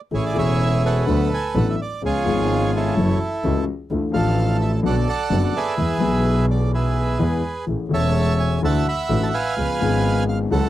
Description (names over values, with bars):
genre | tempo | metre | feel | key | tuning
tango | 127 BPM | 4/4 | rubato | A major | A4 = 439 Hz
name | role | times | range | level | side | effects
bandoneon | melody | 0.1-10.7 s | E4 to B5 | -24 LUFS | right 3 dB | none
dark grand piano | accompaniment | 0.1-10.7 s | E1 to A4 | -22 LUFS | left 4 dB | none
clear double bass | bass | 0.1-10.7 s | E1 to E2 | -22 LUFS | right 1 dB | none
room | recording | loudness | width
little or no reverb | dry, close 1970s-style studio recording | -18 LUFS | side -13 dB against mid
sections
0.1-10.7 A section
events
none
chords
0.1 Amaj7; 1.1 D6; 2.0 C#7; 3.0 F#m7; 3.9 Dmadd9; 4.8 Bm7; 5.8 E; 7.7 Amaj7; 8.6 Dadd9; 9.6 C#7